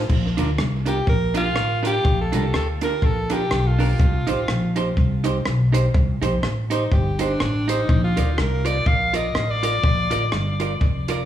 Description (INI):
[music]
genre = ska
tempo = 123 BPM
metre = 4/4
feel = swing 57% on 8ths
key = Bb major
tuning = A4 = 442 Hz
[part]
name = upright bass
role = bass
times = 0.0-11.2 s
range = F1 to D2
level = -22 LUFS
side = equal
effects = none
[part]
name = compact cocktail drum kit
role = drums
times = 0.1-11.2 s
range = crash cymbal, hi-hat, kick drum, rim click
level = -23 LUFS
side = equal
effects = tape echo
[part]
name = vintage hollow-body jazz guitar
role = accompaniment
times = 0.4-11.2 s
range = D4 to D5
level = -27 LUFS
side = right 4 dB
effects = none
[part]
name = bright alto saxophone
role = melody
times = 0.9-10.7 s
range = D4 to F5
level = -24 LUFS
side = left 1 dB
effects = tape echo
[sound]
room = light reverb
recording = studio reverb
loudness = -18 LUFS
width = side -11 dB against mid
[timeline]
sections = 0.1-11.3 A section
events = alto saxophone solo 0.1-11.3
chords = 0.1 Bb; 4.0 Cm; 7.9 Bb